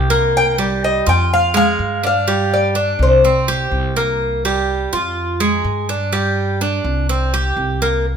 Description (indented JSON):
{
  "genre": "latin, Cuban son and guajira",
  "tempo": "124 BPM",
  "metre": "4/4",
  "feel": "straight",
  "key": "unclear",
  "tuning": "A4 = 440 Hz",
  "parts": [
    { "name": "Cuban tres", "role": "arpeggios", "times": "0.0-8.0 s", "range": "G3 to G4", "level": "-18 LUFS", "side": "right 2 dB", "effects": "none" },
    { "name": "upright bass", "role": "bass", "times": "0.0-8.2 s", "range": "C2 to G2", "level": "-20 LUFS", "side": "left 1 dB", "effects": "none" },
    { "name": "Cuban tres", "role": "melody", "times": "0.4-3.9 s", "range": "C5 to G5", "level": "-16 LUFS", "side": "left 2 dB", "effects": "none" }
  ],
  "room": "moderate large studio reverb, RT60 1.2 s",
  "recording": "minimal, uncompressed stereo recording",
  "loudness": "-14 LUFS",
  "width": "side -7 dB against mid",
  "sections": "0.0-8.1 A section",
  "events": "none",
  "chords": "0.0 C5; 1.3 Fm; 2.3 G5; 3.2 C5; 5.2 Fm; 6.1 G5; 7.1 C5"
}